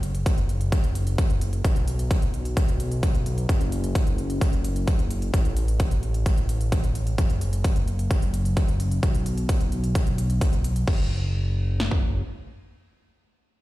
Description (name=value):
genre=EDM, festival progressive house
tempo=130 BPM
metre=4/4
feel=straight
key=unclear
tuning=A4 = 441 Hz
part: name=fat analog bass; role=bass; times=0.0-12.2 s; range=F#1 to B1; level=-25 LUFS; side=equal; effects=sidechain pumping
part: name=big-room dance drum kit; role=drums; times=0.0-11.0 s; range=crash cymbal, hi-hat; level=-40 LUFS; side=equal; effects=none
part: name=big-room dance drum kit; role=drums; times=0.3-12.0 s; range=kick drum, snare drum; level=-22 LUFS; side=equal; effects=none
room=little or no reverb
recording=played on a big sound system in a bare room, stone room reverb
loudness=-21 LUFS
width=side -17 dB against mid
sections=0.0-10.9 A section; 10.9-13.6 B section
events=none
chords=none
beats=0.26 0.72 1.18 | 1.64 2.11 2.57 3.03 | 3.49 3.95 4.41 4.88 | 5.34 5.80 6.26 6.72 | 7.18 7.64 8.11 8.57 | 9.03 9.49 9.95 10.41 | 10.88 11.34 11.80